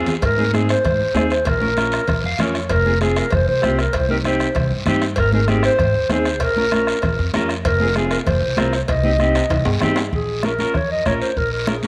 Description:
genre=latin, cumbia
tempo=194 BPM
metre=4/4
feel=straight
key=unclear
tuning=A4 = 440 Hz
part: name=mellow electric guitar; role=accompaniment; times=0.0-11.9 s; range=C4 to F5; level=-26 LUFS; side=equal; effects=none
part: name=upright bass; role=bass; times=0.0-11.9 s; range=F1 to Ab2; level=-25 LUFS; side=equal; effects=none
part: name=congas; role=percussion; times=0.1-11.9 s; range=none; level=-28 LUFS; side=equal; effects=none
part: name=guiro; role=percussion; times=0.1-11.9 s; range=none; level=-34 LUFS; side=equal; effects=none
part: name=timbales and cowbell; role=percussion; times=0.1-10.0 s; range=none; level=-31 LUFS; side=equal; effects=none
part: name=bombo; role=percussion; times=0.2-11.8 s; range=none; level=-28 LUFS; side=equal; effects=none
part: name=dark clarinet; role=melody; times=0.3-11.9 s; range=Ab4 to Eb5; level=-23 LUFS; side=equal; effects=none
room=light reverb, studio reverb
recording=none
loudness=-18 LUFS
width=mono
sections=0.2-10.1 A section; 10.1-11.9 B section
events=drum fill 0.0, 9.4-10.1; clean electric guitar fill 2.1-2.7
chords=0.2 Ab; 1.5 Bbm; 2.7 Fm; 3.9 Cm; 5.2 Ab; 6.4 Bbm; 7.7 Fm; 8.9 Cm; 10.1 Bbm7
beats=| 0.22 0.53 0.84 1.15 | 1.46 1.77 2.08 2.39 | 2.70 3.01 3.32 3.63 | 3.94 4.25 4.56 4.87 | 5.18 5.49 5.79 6.10 | 6.41 6.72 7.03 7.34 | 7.65 7.96 8.27 8.58 | 8.89 9.20 9.51 9.82 | 10.12 10.44 10.74 11.05 | 11.36 11.67

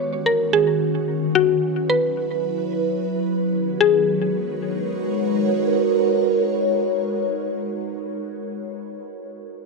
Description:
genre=amapiano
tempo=free time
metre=none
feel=none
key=G# minor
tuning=A4 = 439 Hz
part: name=mallet-like synth pluck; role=melody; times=0.0-8.4 s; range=F#4 to C#5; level=-20 LUFS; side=left 3 dB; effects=chorus, analog delay
part: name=ethereal airy pad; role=sustained chords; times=0.0-8.4 s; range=D#3 to C#5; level=-22 LUFS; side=right 1 dB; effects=ensemble chorus, built-in reverb, phaser
room=moderate spring reverb, RT60 2.4 s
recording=dry, gritty hardware recording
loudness=-19 LUFS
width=side -2 dB against mid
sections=0.0-3.8 A section; 3.8-8.2 B section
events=none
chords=0.0 D#m7; 1.3 F#7sus4; 3.3 D#7alt; 3.8 G#m11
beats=free time

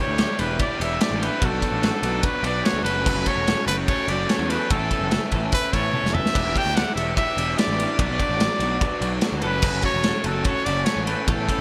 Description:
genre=indie rock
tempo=146 BPM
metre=4/4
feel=straight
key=unclear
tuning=A4 = 440 Hz
part: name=warm trumpet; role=melody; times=0.0-11.6 s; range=A4 to G5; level=-28 LUFS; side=equal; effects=none
part: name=glockenspiel with rubber mallets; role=second line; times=0.0-11.6 s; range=E6 to E7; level=-38 LUFS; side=equal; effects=none
part: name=hollow soft pad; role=sustained chords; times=0.0-11.6 s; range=D4 to D6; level=-41 LUFS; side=equal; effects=none
part: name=electric guitar through a small old amp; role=riff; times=0.0-11.6 s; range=E2 to F#4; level=-33 LUFS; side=equal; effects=subtle chorus
part: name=electric guitar through a small old amp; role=riff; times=0.0-11.6 s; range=E3 to A4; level=-35 LUFS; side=equal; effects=analog chorus, digital delay
part: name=fuzz picked electric bass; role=bass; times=0.1-11.6 s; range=E1 to E2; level=-30 LUFS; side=equal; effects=overdrive
part: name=loose indie drum kit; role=drums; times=0.2-11.6 s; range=crash cymbal, kick drum, ride cymbal, snare drum, toms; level=-27 LUFS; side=equal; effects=gated reverb
room=light reverb, studio reverb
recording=bright 1980s-style digital production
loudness=-22 LUFS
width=mono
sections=0.0-11.6 A section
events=drum fill 5.9-6.3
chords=0.0 Em7; 1.4 Bm; 2.9 F#m; 4.7 Aadd9; 6.3 Em7; 8.0 Bm; 9.4 F#m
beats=0.20 0.61 1.01 | 1.42 1.83 2.24 2.65 | 3.06 3.47 3.88 4.29 | 4.70 5.11 5.52 5.93 | 6.34 6.75 7.16 7.57 | 7.99 8.40 8.81 9.22 | 9.63 10.04 10.46 10.87 | 11.28

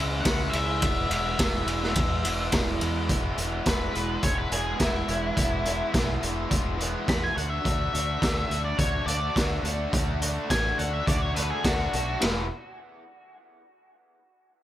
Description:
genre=indie rock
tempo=105 BPM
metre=4/4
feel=straight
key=E mixolydian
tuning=A4 = 440 Hz
part: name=raw garage guitar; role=riff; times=0.0-12.4 s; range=E2 to F#4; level=-33 LUFS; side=left 5 dB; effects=overdrive
part: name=raw garage guitar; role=riff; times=0.0-12.4 s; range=C#3 to G#4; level=-33 LUFS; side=right 4 dB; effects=overdrive, wide subtle chorus, analog delay
part: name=fingered electric bass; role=bass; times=0.0-12.5 s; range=E1 to E2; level=-32 LUFS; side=equal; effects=none
part: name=octave-fuzz lead guitar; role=melody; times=0.2-12.2 s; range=E4 to B5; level=-31 LUFS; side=left 1 dB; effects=distortion, analog delay
part: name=raw garage drum kit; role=drums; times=0.2-12.3 s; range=hi-hat, kick drum, ride cymbal, snare drum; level=-27 LUFS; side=equal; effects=none
room=light reverb, studio ambience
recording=none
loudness=-24 LUFS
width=side -13 dB against mid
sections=0.0-3.1 A section; 3.1-12.2 B section; 12.2-14.5 C section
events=lead electric guitar solo 3.1-12.2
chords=0.0 C#m; 0.8 E; 7.4 D; 12.2 E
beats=0.25 | 0.81 1.38 1.95 2.52 | 3.09 3.66 4.23 4.80 | 5.37 5.94 6.51 7.08 | 7.65 8.22 8.79 9.36 | 9.93 10.50 11.07 11.64 | 12.21

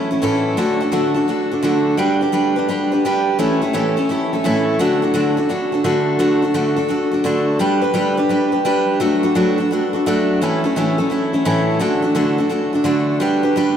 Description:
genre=country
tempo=171 BPM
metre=4/4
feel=swing 66% on 8ths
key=D major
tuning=A4 = 440 Hz
part: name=picked steel-string acoustic guitar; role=solo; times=0.0-13.8 s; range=A2 to B4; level=-15 LUFS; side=equal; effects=none
room=wet cathedral reverb, RT60 7.0 s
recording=in a vast, echoing space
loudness=-15 LUFS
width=side -8 dB against mid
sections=0.0-6.2 A section; 6.2-13.8 B section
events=none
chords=0.0 A; 0.6 D; 2.0 G; 3.4 A; 4.8 D; 7.6 G; 9.0 D/F#; 10.4 A; 11.8 D; 13.2 G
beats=0.23 | 0.58 0.93 1.28 1.64 | 1.99 2.34 2.69 3.04 | 3.39 3.74 4.09 4.44 | 4.79 5.14 5.50 5.85 | 6.20 6.55 6.90 7.25 | 7.60 7.95 8.30 8.65 | 9.00 9.35 9.70 10.05 | 10.40 10.75 11.10 11.45 | 11.80 12.15 12.50 12.85 | 13.20 13.55

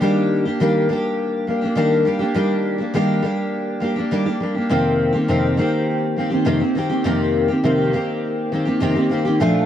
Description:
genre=indie pop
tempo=102 BPM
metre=4/4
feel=straight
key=unclear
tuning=A4 = 440 Hz
part: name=picked steel-string acoustic guitar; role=solo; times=0.0-9.7 s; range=F2 to G4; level=-17 LUFS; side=equal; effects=lush chorus, vibrato effect
room=light reverb, studio ambience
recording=cassette tape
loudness=-17 LUFS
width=side -10 dB against mid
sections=0.0-9.7 A section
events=none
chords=0.0 Ebmaj7; 4.7 F9sus4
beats=| 0.01 0.60 1.19 1.78 | 2.36 2.95 3.54 4.12 | 4.71 5.30 5.89 6.47 | 7.06 7.65 8.24 8.82 | 9.41

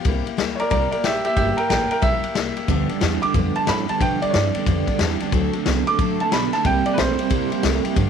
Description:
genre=rockabilly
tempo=182 BPM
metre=4/4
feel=swing 64% on 8ths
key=unclear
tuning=A4 = 441 Hz
part: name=picked steel-string acoustic guitar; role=accompaniment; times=0.0-8.1 s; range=G2 to A4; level=-27 LUFS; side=left 11 dB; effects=none
part: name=vintage drum kit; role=drums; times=0.0-8.1 s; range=kick drum, ride cymbal, snare drum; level=-24 LUFS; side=left 3 dB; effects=none
part: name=upright bass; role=bass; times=0.1-8.1 s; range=G1 to B2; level=-25 LUFS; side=right 1 dB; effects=none
part: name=bright upright piano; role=melody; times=0.6-7.6 s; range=G4 to D6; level=-22 LUFS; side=right 2 dB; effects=slapback echo
part: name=electric guitar through a small old amp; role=riff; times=2.7-8.1 s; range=G2 to B3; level=-24 LUFS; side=right 15 dB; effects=tremolo
room=light reverb, studio reverb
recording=1960s-style stereo with parts hard left and right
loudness=-18 LUFS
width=side -7 dB against mid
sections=0.0-8.1 A section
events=upright piano solo 0.0-8.1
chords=0.1 C7; 2.7 G7; 5.3 D7; 6.6 C7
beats=| 0.06 0.39 0.71 1.04 | 1.37 1.70 2.03 2.36 | 2.69 3.02 3.35 3.68 | 4.01 4.33 4.67 5.00 | 5.33 5.66 5.99 6.32 | 6.65 6.98 7.31 7.64 | 7.97

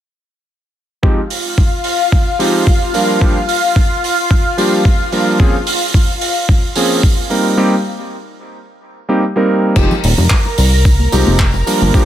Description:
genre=nu-disco, nu disco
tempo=110 BPM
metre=4/4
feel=swing 53% on 16ths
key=F minor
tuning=A4 = 440 Hz
part: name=warm electric grand piano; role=accompaniment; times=1.0-12.1 s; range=F3 to Bb4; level=-16 LUFS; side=right 1 dB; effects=sidechain pumping, low-pass filter, dub echo
part: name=lush unison pad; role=sustained chords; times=1.3-12.1 s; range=F4 to Bb5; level=-19 LUFS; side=left 2 dB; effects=chorus, phaser, sidechain pumping
part: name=electronic kick drum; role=drums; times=1.0-12.1 s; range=none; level=-12 LUFS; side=equal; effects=overdrive, studio reverb
part: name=damped 70s drum kit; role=drums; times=1.3-11.8 s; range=crash cymbal, handclaps, hi-hat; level=-20 LUFS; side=right 4 dB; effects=studio reverb
part: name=chorused synth bass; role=bass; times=9.8-11.9 s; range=Eb1 to C2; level=-12 LUFS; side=equal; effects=tube saturation, sidechain pumping
part: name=tambourine, congas and bongos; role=percussion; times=9.8-12.1 s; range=none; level=-22 LUFS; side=left 3 dB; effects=none
room=light reverb, small room ambience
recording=none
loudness=-11 LUFS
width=side -11 dB against mid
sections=1.0-9.8 A section; 9.8-12.1 B section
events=break 7.6-9.8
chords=1.0 Fm7; 2.9 Gm7; 5.4 Bbm7; 7.3 Cm7; 9.8 Fm7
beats=| 1.03 1.58 2.12 2.67 | 3.21 3.76 4.31 4.85 | 5.40 5.94 6.49 7.03 | 7.58 8.12 8.67 9.21 | 9.76 10.31 10.85 11.40 | 11.94

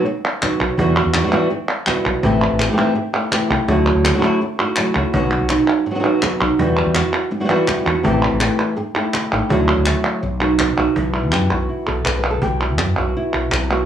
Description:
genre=flamenco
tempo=165 BPM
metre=4/4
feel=straight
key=B phrygian dominant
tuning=A4 = 439 Hz
part: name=flamenco guitar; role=melody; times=0.0-13.9 s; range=B2 to B4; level=-18 LUFS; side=right 1 dB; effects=cassette tape, plate reverb
part: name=palmas hand claps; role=percussion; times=0.3-13.9 s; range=none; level=-21 LUFS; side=right 1 dB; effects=none
part: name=cajon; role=percussion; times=0.4-13.7 s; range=none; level=-25 LUFS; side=right 3 dB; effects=none
part: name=mellow fretless electric bass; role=bass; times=0.6-13.9 s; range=A1 to F#2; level=-21 LUFS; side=equal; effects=none
room=moderate studio reverb, RT60 0.5 s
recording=home recording on cassette, studio reverb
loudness=-15 LUFS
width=side -9 dB against mid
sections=0.0-11.0 A section; 11.0-13.9 B section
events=none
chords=0.0 B; 0.8 Emadd9; 2.2 Am7; 3.7 Dadd9; 5.1 B; 6.6 Emadd9; 8.0 Am7; 9.5 Dadd9; 10.2 B; 11.0 Bsus4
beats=0.06 0.42 | 0.78 1.15 1.51 1.87 | 2.23 2.60 2.96 3.32 | 3.69 4.05 4.41 4.77 | 5.14 5.50 5.86 6.23 | 6.59 6.95 7.32 7.68 | 8.04 8.41 8.77 9.14 | 9.50 9.87 10.23 10.60 | 10.96 11.33 11.69 12.06 | 12.43 12.79 13.16 13.53

